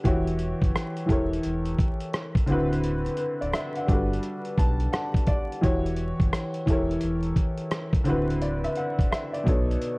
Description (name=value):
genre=lo-fi hip hop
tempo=86 BPM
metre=4/4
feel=swing 64% on 16ths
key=unclear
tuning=A4 = 437 Hz
part: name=warm upright piano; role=accompaniment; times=0.0-10.0 s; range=B2 to A5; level=-26 LUFS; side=equal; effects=cassette tape
part: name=sub bass with octave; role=bass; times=0.1-9.8 s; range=D1 to B1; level=-29 LUFS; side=equal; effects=none
part: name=dusty soul sampler-style drum kit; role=drums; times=0.1-10.0 s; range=hi-hat, kick drum, rim click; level=-25 LUFS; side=equal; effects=none
room=light reverb, digital ambience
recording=worn, warbling old tape, cassette tape, vinyl crackle, warbly pitch drift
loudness=-23 LUFS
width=side -26 dB against mid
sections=0.0-10.0 A section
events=upright piano fill 4.2-5.6, 9.8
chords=0.0 Em69; 1.1 A7b9/E; 2.5 D13; 3.9 Gmaj9; 5.6 Em69; 6.7 A7b9/E; 8.1 D13; 9.5 B9